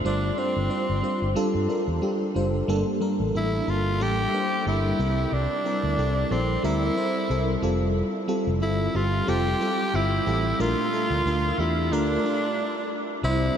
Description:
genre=1980s-style pop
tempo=91 BPM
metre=4/4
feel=swing 55% on 16ths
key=unclear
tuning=A4 = 438 Hz
part: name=FM electric piano with soft pad layer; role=accompaniment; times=0.0-13.6 s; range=G2 to C5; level=-26 LUFS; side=equal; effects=chorus, tremolo
part: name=raspy tenor saxophone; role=melody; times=0.1-13.5 s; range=C4 to G4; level=-27 LUFS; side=equal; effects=analog delay
part: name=vintage muted fingered electric bass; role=bass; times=0.1-13.5 s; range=F1 to G2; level=-26 LUFS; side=equal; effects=none
room=wet huge ambient reverb, RT60 7.8 s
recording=dreamy mix soaked in reverb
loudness=-22 LUFS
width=side -8 dB against mid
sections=0.0-2.7 A section; 2.7-13.2 B section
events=stop 12.6-13.2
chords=0.0 G7sus4; 2.7 Gmadd9; 5.0 C7; 7.6 Fadd9; 10.6 Bbmaj7

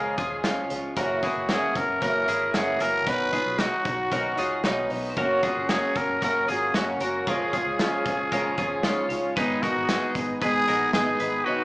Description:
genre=jangly indie pop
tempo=114 BPM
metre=4/4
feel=straight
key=unclear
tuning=A4 = 441 Hz
part: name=growling trumpet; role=melody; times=0.0-11.6 s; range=Eb4 to B4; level=-26 LUFS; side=equal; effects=none
part: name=fingerpicked twelve-string acoustic guitar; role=accompaniment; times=0.0-11.6 s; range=Gb2 to D#4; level=-29 LUFS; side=right 1 dB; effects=none
part: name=twelve-string electric guitar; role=arpeggios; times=0.0-11.6 s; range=B3 to Cb5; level=-30 LUFS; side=left 1 dB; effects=none
part: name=vintage muted fingered electric bass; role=bass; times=0.0-11.4 s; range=Gb1 to Eb2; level=-42 LUFS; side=equal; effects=none
part: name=loose indie drum kit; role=drums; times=0.2-11.3 s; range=hi-hat, kick drum, snare drum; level=-30 LUFS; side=equal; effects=none
part: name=vibraphone with hard mallets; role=second line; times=5.1-11.6 s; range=Cb4 to F4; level=-35 LUFS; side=equal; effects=none
part: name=warm analog pad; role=sustained chords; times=5.2-11.6 s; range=Ab4 to Eb6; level=-36 LUFS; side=equal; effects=none
room=moderate large studio reverb, RT60 1.2 s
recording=band playing live in one room, small speaker sound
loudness=-22 LUFS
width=side -21 dB against mid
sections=0.0-11.6 A section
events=none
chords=0.0 Db; 1.0 Gb7; 3.1 Badd9; 5.2 Gb; 7.3 Db; 9.4 Abm

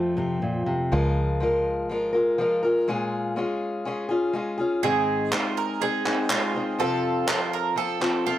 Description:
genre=indie folk with a building arrangement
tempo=122 BPM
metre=4/4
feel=straight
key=unclear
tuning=A4 = 440 Hz
part: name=fingerpicked steel-string acoustic guitar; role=accompaniment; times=0.0-0.9 s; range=F2 to C4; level=-24 LUFS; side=left 1 dB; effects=none
part: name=picked acoustic archtop guitar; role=accompaniment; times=0.9-8.4 s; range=F2 to Bb4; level=-24 LUFS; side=left 2 dB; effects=none
part: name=picked electric bass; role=bass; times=0.9-8.1 s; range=Ab1 to Eb2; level=-25 LUFS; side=equal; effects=none
part: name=mandolin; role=arpeggios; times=4.8-8.4 s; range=F4 to Bb4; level=-26 LUFS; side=right 8 dB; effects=none
part: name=group handclap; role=percussion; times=5.3-8.1 s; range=none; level=-27 LUFS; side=right 1 dB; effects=none
room=moderate large studio reverb, RT60 1.1 s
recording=none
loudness=-22 LUFS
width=side -12 dB against mid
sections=0.9-8.4 A section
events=none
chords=0.0 F; 0.9 Db6; 2.9 Bbm7; 4.8 Ab; 6.8 F

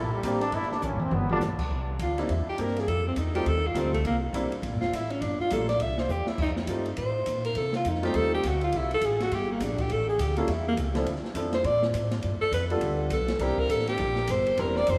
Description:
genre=jazz, small-group swing and bop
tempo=205 BPM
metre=4/4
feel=swing 62% on 8ths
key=C mixolydian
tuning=A4 = 440 Hz
part: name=bright trombone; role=second line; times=0.0-1.4 s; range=G3 to E4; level=-35 LUFS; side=equal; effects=none
part: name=upright bass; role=bass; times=0.0-15.0 s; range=E1 to C3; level=-33 LUFS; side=equal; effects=none
part: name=warm grand piano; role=accompaniment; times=0.2-15.0 s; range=F3 to Bb4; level=-35 LUFS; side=equal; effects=none
part: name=open jazz drum kit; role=drums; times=0.2-15.0 s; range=crash cymbal, hi-hat, kick drum, ride cymbal, snare drum, toms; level=-38 LUFS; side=equal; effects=none
part: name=breathy alto saxophone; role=melody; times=2.0-15.0 s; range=A3 to E5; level=-30 LUFS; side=equal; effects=none
room=wet cathedral reverb, RT60 6.0 s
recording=in a vast, echoing space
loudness=-27 LUFS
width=mono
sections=0.0-1.7 A section; 1.7-15.0 A section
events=trombone solo 0.0-1.7; drum fill 0.8-1.4, 6.1; alto saxophone solo 1.7-15.0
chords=0.0 C7; 1.1 G7; 1.7 C7; 2.9 F7; 4.0 C7; 5.2 Gm7; 5.8 C; 6.4 F7; 8.7 C5; 9.9 A; 11.1 Dm7; 12.2 G7; 13.4 C7

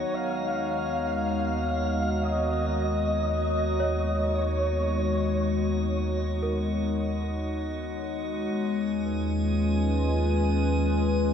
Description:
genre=ambient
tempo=57 BPM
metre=4/4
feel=straight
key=unclear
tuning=A4 = 441 Hz
part: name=breathy flute-like synth lead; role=melody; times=0.0-5.9 s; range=C#5 to F5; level=-31 LUFS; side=equal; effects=ensemble chorus, cassette tape, diffuse ambient delay
part: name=warbly tape-like pad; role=sustained chords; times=0.0-11.3 s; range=Gb3 to Bb5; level=-28 LUFS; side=left 2 dB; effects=chorus, built-in reverb
part: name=round analog bass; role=bass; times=0.0-11.3 s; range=Eb2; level=-29 LUFS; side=right 1 dB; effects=none
part: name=overtone-sweeping drone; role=drone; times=0.0-8.6 s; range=D#3 to D#4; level=-39 LUFS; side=left 1 dB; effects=chorus, built-in reverb
part: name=drifting glass-harmonics texture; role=texture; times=0.0-11.3 s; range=F#4 to Ab5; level=-37 LUFS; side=right 3 dB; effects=chorus, built-in reverb
part: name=worn celesta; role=arpeggios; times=3.8-11.3 s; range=Bb4 to Db5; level=-38 LUFS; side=right 2 dB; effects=diffuse ambient delay
room=wet lush hall reverb, RT60 2.7 s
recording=dark, warm production, nothing above 10.8 kHz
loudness=-24 LUFS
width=side -8 dB against mid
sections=0.0-8.5 A section; 8.5-11.3 B section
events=none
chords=0.1 Abm11/Eb; 8.5 Db7/Eb

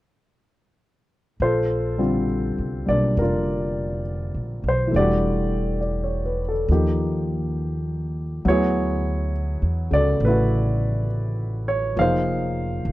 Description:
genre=jazz ballad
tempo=68 BPM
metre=4/4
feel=swing 66% on 8ths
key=unclear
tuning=A4 = 440 Hz
part: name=warm baby grand piano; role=accompaniment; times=1.4-12.9 s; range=C#3 to F5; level=-22 LUFS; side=equal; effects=none
part: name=upright bass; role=bass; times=1.4-12.9 s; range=E1 to E2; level=-24 LUFS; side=equal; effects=none
room=small room ambience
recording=dry, close 1970s-style studio recording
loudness=-20 LUFS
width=side -16 dB against mid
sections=1.4-12.9 A section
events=none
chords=1.4 Bbmaj9; 4.9 Em11; 6.7 Ebadd9; 8.4 Dmaj9; 12.0 Fm7

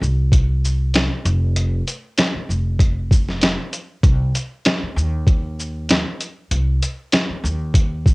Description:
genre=hip hop, boom-bap hip-hop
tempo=97 BPM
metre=4/4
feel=swing 54% on 16ths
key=C minor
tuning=A4 = 440 Hz
part: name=upright bass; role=bass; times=0.0-8.1 s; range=F1 to Eb2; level=-20 LUFS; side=equal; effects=none
part: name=boom bap sampler-style drum kit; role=drums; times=0.0-8.1 s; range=hi-hat, kick drum, shaker, snare drum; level=-16 LUFS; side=equal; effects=cassette tape
room=light reverb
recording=home recording on cassette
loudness=-17 LUFS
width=side -27 dB against mid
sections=0.0-4.0 A section; 4.0-8.1 B section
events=none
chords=none

